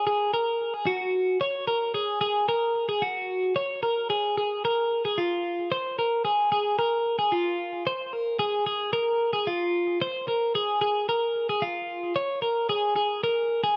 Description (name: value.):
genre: indie pop.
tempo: 112 BPM.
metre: 4/4.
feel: straight.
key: unclear.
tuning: A4 = 440 Hz.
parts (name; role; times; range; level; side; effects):
twelve-string electric guitar; solo; 0.0-13.8 s; F4 to Db5; -26 LUFS; equal; none.
room: wet spring reverb, RT60 1.5 s, digital ambience.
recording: echo-heavy mix.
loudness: -26 LUFS.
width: mono.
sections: 0.0-6.8 A section; 6.8-13.8 B section.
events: none.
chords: none.